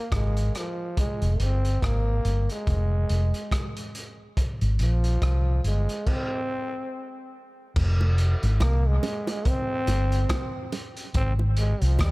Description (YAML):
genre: dub reggae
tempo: 71 BPM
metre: 4/4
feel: swing 58% on 16ths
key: F minor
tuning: A4 = 440 Hz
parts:
  - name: growling trombone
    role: melody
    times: 0.0-12.1 s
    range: F3 to C4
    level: -31 LUFS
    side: equal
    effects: dub echo
  - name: vintage muted fingered electric bass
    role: bass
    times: 0.1-12.1 s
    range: F1 to Eb2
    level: -22 LUFS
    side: equal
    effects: none
  - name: crunchy breakbeat drum kit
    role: drums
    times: 0.1-12.1 s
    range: crash cymbal, hi-hat, kick drum, rim click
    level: -29 LUFS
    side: equal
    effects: none
  - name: bongos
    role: percussion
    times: 8.0-12.1 s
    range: none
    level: -35 LUFS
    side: right 3 dB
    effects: dub echo
room: small room ambience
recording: echo-heavy mix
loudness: -22 LUFS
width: side -22 dB against mid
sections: 0.0-7.8 A section; 7.8-12.1 B section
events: stop 6.1-7.8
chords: 0.0 N.C.; 1.0 Fm; 4.4 Ab; 7.8 F5; 11.1 Ab